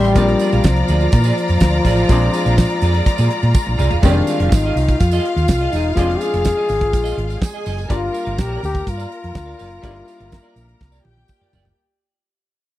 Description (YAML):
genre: disco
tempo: 124 BPM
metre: 4/4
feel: straight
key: F dorian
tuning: A4 = 440 Hz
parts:
  - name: breathy trombone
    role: melody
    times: 0.0-11.3 s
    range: F3 to Ab4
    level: -20 LUFS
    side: left 3 dB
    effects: none
  - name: clear studio string section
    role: second line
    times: 0.0-11.8 s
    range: F4 to C6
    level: -25 LUFS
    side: left 1 dB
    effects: none
  - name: clean electric guitar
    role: accompaniment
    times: 0.0-11.7 s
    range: F4 to G5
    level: -28 LUFS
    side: right 10 dB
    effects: spring reverb
  - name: clear baby grand piano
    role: accompaniment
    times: 0.0-11.8 s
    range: Eb3 to F4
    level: -26 LUFS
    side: left 2 dB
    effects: none
  - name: hollow-body short-scale fingered electric bass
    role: bass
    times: 0.0-11.7 s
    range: E1 to Bb2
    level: -18 LUFS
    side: right 1 dB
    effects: none
  - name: damped 70s drum kit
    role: drums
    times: 0.0-11.8 s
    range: crash cymbal, hi-hat, kick drum, snare drum, toms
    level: -17 LUFS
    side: right 1 dB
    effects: none
  - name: tambourine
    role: percussion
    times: 0.0-11.8 s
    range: none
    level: -37 LUFS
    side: right 17 dB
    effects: none
room: little or no reverb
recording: dry, close 1970s-style studio recording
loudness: -14 LUFS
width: side -15 dB against mid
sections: 0.0-4.0 A section; 4.0-11.8 B section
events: drum fill 3.6-4.0, 10.8-11.8; fade-out 4.0-11.8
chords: 0.2 Bb7; 4.0 Fm7; 7.9 Gm7